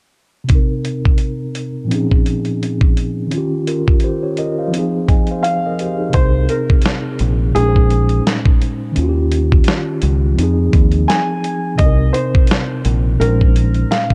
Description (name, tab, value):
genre	lo-fi hip hop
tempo	85 BPM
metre	4/4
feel	swing 57% on 16ths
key	unclear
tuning	A4 = 436 Hz
part	mellow tine electric piano	accompaniment	0.4-14.1 s	Bb2 to Ab5	-21 LUFS	equal	low-pass filter
part	dusty soul sampler-style drum kit	drums	0.5-14.1 s	hi-hat, kick drum, snare drum	-17 LUFS	equal	none
part	felt-muted upright piano	melody	5.4-14.1 s	Ab4 to Ab5	-23 LUFS	equal	low-pass filter
part	deep dub fingered electric bass	bass	6.1-13.8 s	Bb1 to F2	-18 LUFS	equal	none
room	little or no reverb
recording	dark, warm production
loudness	-16 LUFS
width	mono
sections	0.5-6.1 A section; 6.1-14.1 B section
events	filter sweep on tine electric piano 0.5-6.1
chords	0.5 Cm7; 1.9 Bbm11; 3.3 Eb9; 4.7 Fm7; 6.1 Cm7; 7.6 Bbm11; 9.0 Eb9; 10.4 Fm7; 11.8 Cm7; 13.2 Bbm11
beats	| 0.50 1.20 1.91 2.61 | 3.32 4.03 4.73 5.44 | 6.14 6.85 7.55 8.26 | 8.97 9.67 10.38 11.08 | 11.79 12.50 13.20 13.91